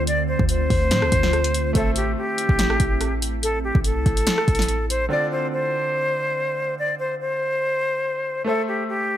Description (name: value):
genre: hip hop, trap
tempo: 143 BPM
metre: 4/4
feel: half-time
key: D minor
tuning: A4 = 442 Hz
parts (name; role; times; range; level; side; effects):
- silver concert flute; melody; 0.0-9.2 s; G4 to D5; -23 LUFS; equal; tape echo
- clear concert grand piano; accompaniment; 0.0-9.2 s; D3 to E5; -30 LUFS; equal; none
- glassy FM pad; sustained chords; 0.0-5.1 s; D3 to F4; -29 LUFS; right 1 dB; ensemble chorus, built-in reverb, phaser
- clean 808-style bass; bass; 0.0-5.1 s; A1 to A2; -24 LUFS; equal; none
- deep house drum kit; drums; 0.1-5.0 s; hi-hat, kick drum, rim click, snare drum; -22 LUFS; equal; overdrive
room: digital ambience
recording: none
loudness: -19 LUFS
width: side -11 dB against mid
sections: 0.0-5.1 A section; 5.1-9.2 A section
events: none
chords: 0.0 Dm7; 1.8 Am; 5.1 Dm7; 8.5 Am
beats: | 0.07 0.49 0.91 1.33 | 1.75 2.17 2.59 3.01 | 3.43 3.85 4.27 4.69 | 5.11 5.53 5.95 6.37 | 6.79 7.21 7.63 8.04 | 8.46 8.88